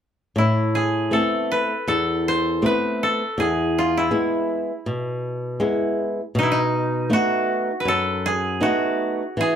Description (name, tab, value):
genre	fado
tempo	80 BPM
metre	4/4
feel	rubato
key	A harmonic minor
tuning	A4 = 440 Hz
part	koto	melody	0.4-9.6 s	D#4 to C5	-22 LUFS	equal	plate reverb
part	flamenco guitar	accompaniment	0.4-9.6 s	E2 to E4	-22 LUFS	equal	none
room	moderate small room reverb, RT60 0.5 s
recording	none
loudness	-19 LUFS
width	side -8 dB against mid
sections	0.4-9.6 A section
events	none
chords	0.4 Amadd9; 3.4 E; 6.4 B7